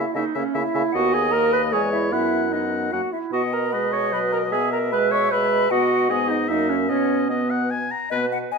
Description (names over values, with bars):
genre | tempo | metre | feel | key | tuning
quick classical-period movement for wind quintet | 151 BPM | 3/4 | straight | B major | A4 = 440 Hz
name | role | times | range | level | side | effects
hollow concert flute | melody | 0.0-8.6 s | B4 to C#6 | -28 LUFS | left 11 dB | none
clear oboe | second line | 0.0-8.3 s | B4 to A#5 | -27 LUFS | left 5 dB | none
clear clarinet | accompaniment | 0.0-8.6 s | B3 to D#5 | -22 LUFS | right 5 dB | none
mellow French horn | accompaniment | 0.0-8.3 s | F#3 to B3 | -29 LUFS | left 3 dB | none
mellow bassoon | bass | 0.0-8.4 s | D#2 to C#3 | -28 LUFS | equal | none
room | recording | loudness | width
moderate recital hall reverb, RT60 1.4 s | none | -19 LUFS | side -4 dB against mid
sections
0.0-8.1 A section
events
none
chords
0.0 C#m69; 0.9 B/D#; 1.7 C#m/E; 2.1 B/F#; 2.9 F#; 3.3 B; 4.5 E/B; 5.7 B; 6.1 G#m; 6.5 F#7; 6.9 B